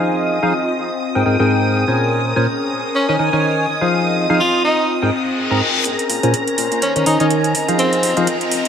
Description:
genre	piano house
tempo	124 BPM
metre	4/4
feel	swing 57% on 16ths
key	Bb dorian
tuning	A4 = 440 Hz
part	string machine, violins	sustained chords	0.0-8.7 s	Bb5 to Eb6	-25 LUFS	equal	ensemble chorus
part	percussive organ stab	riff	0.0-8.3 s	Ab2 to Bb5	-17 LUFS	equal	analog chorus, digital delay
part	airy breathy pad	texture	0.0-8.7 s	C4 to Ab5	-21 LUFS	left 2 dB	chorus
part	bright tenor saxophone	melody	3.0-8.3 s	C4 to F4	-19 LUFS	equal	digital delay
part	reverse cymbal and riser	sound effects	5.1-8.7 s	none	-25 LUFS	left 4 dB	none
part	fat analog bass	bass	5.9-8.7 s	Eb1 to Bb2	-30 LUFS	equal	none
part	electronic hi-hat	drums	5.9-8.7 s	none	-22 LUFS	right 2 dB	high-pass filter on snare, low-pass filter on snare, high-pass filter on hats, low-pass filter on hats, high-pass filter on perc, low-pass filter on perc, high-pass filter on room, low-pass filter on room
room	moderate digital room reverb, RT60 1.2 s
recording	none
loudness	-14 LUFS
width	side -8 dB against mid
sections	0.0-5.9 A section; 5.9-8.7 B section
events	reverse cymbal 5.1-5.9; build-up 5.9-8.7; filter sweep on synth stab 5.9-8.7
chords	0.0 Fm7; 1.0 Abmaj9; 2.0 Bbm9; 3.0 Eb7sus4; 3.7 Fm7; 4.9 Abmaj9; 5.9 Bbm9; 6.8 Eb7sus4; 7.5 Fm7

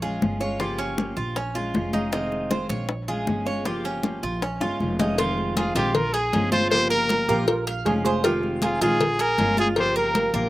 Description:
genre	latin, Cuban son and guajira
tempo	157 BPM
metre	4/4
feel	straight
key	unclear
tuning	A4 = 440 Hz
part	fingerpicked steel-string acoustic guitar	accompaniment	0.0-10.5 s	C3 to G4	-28 LUFS	left 1 dB	slapback echo
part	Cuban tres	arpeggios	0.0-10.5 s	Db4 to F5	-27 LUFS	right 3 dB	none
part	upright bass	bass	0.0-10.5 s	F1 to Bb1	-31 LUFS	right 1 dB	none
part	congas	percussion	0.0-10.5 s	none	-29 LUFS	left 1 dB	none
part	bongos and cowbell	percussion	0.2-10.3 s	none	-28 LUFS	left 4 dB	none
part	breathy trumpet	melody	5.6-10.5 s	F4 to C5	-23 LUFS	equal	none
part	steel pan	second line	7.3-8.5 s	F4 to Ab4	-28 LUFS	right 3 dB	none
room	light reverb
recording	recorded outdoors, with no room sound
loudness	-21 LUFS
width	side -16 dB against mid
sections	0.0-5.2 A section; 5.2-10.5 B section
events	drum fill 4.6-5.2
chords	0.0 Bbm7; 0.6 Gm7b5; 1.4 Bbm7; 2.1 Fm7; 2.9 Bbm7; 3.7 Gm7b5; 4.4 Bbm7; 5.2 Fm7; 5.9 Bbm7; 6.7 Gm7b5; 7.5 Bbm9; 8.2 Fm7; 9.0 Bbm7; 9.8 Gm7b5

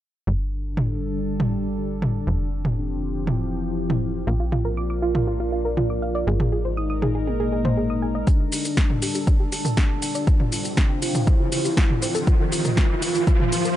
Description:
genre	melodic techno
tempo	120 BPM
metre	4/4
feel	straight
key	unclear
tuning	A4 = 440 Hz
part	soft octave-layered synth lead	melody	0.3-13.7 s	Bb3 to F4	-29 LUFS	left 2 dB	chorus, tremolo, sidechain pumping, tape echo
part	evolving wavetable pad	sustained chords	0.9-13.8 s	F3 to C5	-29 LUFS	equal	phaser, built-in reverb, sidechain pumping
part	tight sequencer bass	bass	0.3-8.2 s	F1 to Bb1	-27 LUFS	equal	tube saturation, sidechain pumping
part	deep house drum kit	drums	0.8-13.7 s	hi-hat, shaker, snare drum, toms	-25 LUFS	equal	overdrive, sidechain pumping on toms, sidechain pumping on perc, sidechain pumping on hats
part	soft round pluck	arpeggios	4.3-13.7 s	F4 to Eb6	-29 LUFS	right 3 dB	chorus, sidechain pumping, digital delay
part	electronic kick drum	drums	8.3-13.4 s	none	-19 LUFS	equal	overdrive
part	riser	sound effects	10.1-13.8 s	none	-29 LUFS	equal	none
room	digital ambience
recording	nothing above 10.5 kHz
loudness	-20 LUFS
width	side -12 dB against mid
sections	0.3-8.3 A section; 8.3-13.8 B section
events	filter sweep on soft synth lead 0.3-8.3; filter sweep on ambient pad 0.3-8.3; build-up 8.3-13.8; filter sweep on synth arpeggio sound 8.3-13.8; riser 10.1-13.8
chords	0.3 G5; 2.3 Fsus2; 4.3 Bb; 6.3 Ab5; 8.3 G5; 10.3 Fsus2; 12.3 Bb

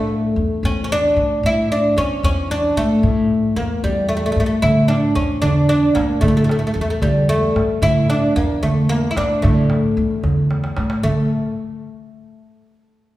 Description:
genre	Arabic maqam ensemble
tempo	75 BPM (dotted quarters)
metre	6/8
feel	straight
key	A maqam hijaz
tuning	A4 = 439 Hz
part	oud	melody	0.0-11.3 s	G3 to E4	-18 LUFS	equal	none
part	upright bass	bass	0.0-11.3 s	A1 to A2	-20 LUFS	equal	none
part	darbuka	percussion	4.6-11.3 s	none	-20 LUFS	right 2 dB	none
room	wet recital hall reverb, RT60 1.7 s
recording	recorded in a church or concert hall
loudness	-15 LUFS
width	side -15 dB against mid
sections	0.0-11.0 A section; 11.0-12.6 B section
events	drum fill 10.5-11.0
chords	none

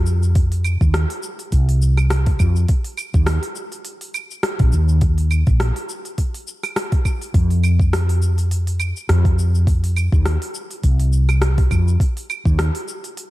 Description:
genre	organic downtempo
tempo	103 BPM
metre	4/4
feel	swing 56% on 16ths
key	unclear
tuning	A4 = 442 Hz
part	woody fretless electric bass	bass	0.0-12.7 s	Bb1 to F2	-16 LUFS	equal	lush chorus, sidechain pumping
part	afro-pop drum kit	drums	0.1-13.3 s	cabasa, claves, hi-hat, rim click	-26 LUFS	equal	none
part	electronic kick drum	drums	0.4-12.6 s	none	-18 LUFS	equal	none
room	digital ambience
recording	dark, warm production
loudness	-16 LUFS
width	side -17 dB against mid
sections	0.0-13.3 A section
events	none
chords	none

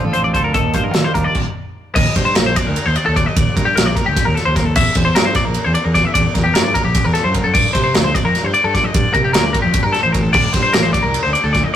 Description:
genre	math rock and midwest emo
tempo	301 BPM (eighths)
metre	7/8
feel	straight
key	unclear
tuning	A4 = 441 Hz
part	twangy electric guitar	accompaniment	0.0-1.3 s	D3 to A4	-24 LUFS	right 4 dB	none
part	twelve-string electric guitar	arpeggios	0.0-11.8 s	G4 to E5	-17 LUFS	left 3 dB	none
part	fuzz fingered electric bass	bass	0.0-11.6 s	A1 to Eb3	-20 LUFS	equal	overdrive
part	modern studio drum kit	drums	0.1-11.6 s	crash cymbal, hi-hat, kick drum, ride cymbal, snare drum	-17 LUFS	right 1 dB	none
room	moderate stone room reverb, RT60 1.4 s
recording	rough rehearsal-room recording, warm saturation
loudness	-13 LUFS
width	side -10 dB against mid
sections	0.0-2.0 A section; 2.0-11.8 B section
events	stop 1.4-2.0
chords	0.0 Dm7; 0.6 Ebmaj9; 2.0 Ebmaj7; 4.8 C9; 7.5 Gmadd9; 10.3 D5

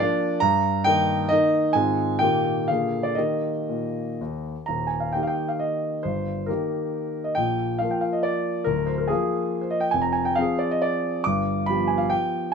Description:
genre	classical, romantic triple-time dance for piano with dotted rhythms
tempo	109-148 BPM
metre	3/4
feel	rubato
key	Eb major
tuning	A4 = 437 Hz
part	warm concert grand piano	solo	0.0-12.5 s	D1 to D6	-21 LUFS	equal	none
room	light reverb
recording	minimal, uncompressed stereo recording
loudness	-21 LUFS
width	side -6 dB against mid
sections	0.0-4.7 A section; 4.7-12.5 A section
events	none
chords	0.4 Eb/G; 1.8 Fm7/Ab; 2.2 Eb/Bb; 2.7 Bb7; 3.2 Eb; 6.0 Eb/G; 7.4 Bb; 8.7 Bb/D; 9.9 Dm7b5/F; 11.3 G7

